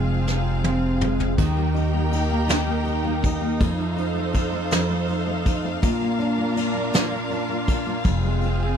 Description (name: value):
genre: six-eight pop ballad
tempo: 54 BPM (dotted quarters)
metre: 6/8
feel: straight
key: Eb major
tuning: A4 = 438 Hz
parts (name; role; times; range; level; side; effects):
- nylon-string guitar; accompaniment; 0.0-8.8 s; F2 to Eb4; -24 LUFS; equal; double-tracked left and right
- clear studio string section; sustained chords; 0.0-8.8 s; C4 to G5; -28 LUFS; equal; none
- upright bass; bass; 0.0-8.8 s; F1 to F2; -25 LUFS; equal; none
- soft brush drum kit; drums; 0.3-8.6 s; crash cymbal, kick drum, ride cymbal, snare drum, toms; -24 LUFS; equal; none
room: studio reverb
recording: none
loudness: -20 LUFS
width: side -8 dB against mid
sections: 0.0-1.4 A section; 1.4-8.8 B section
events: drum fill 0.3-1.4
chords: 0.0 Fm; 1.4 Eb; 3.6 F7; 5.8 Bb; 8.1 Fm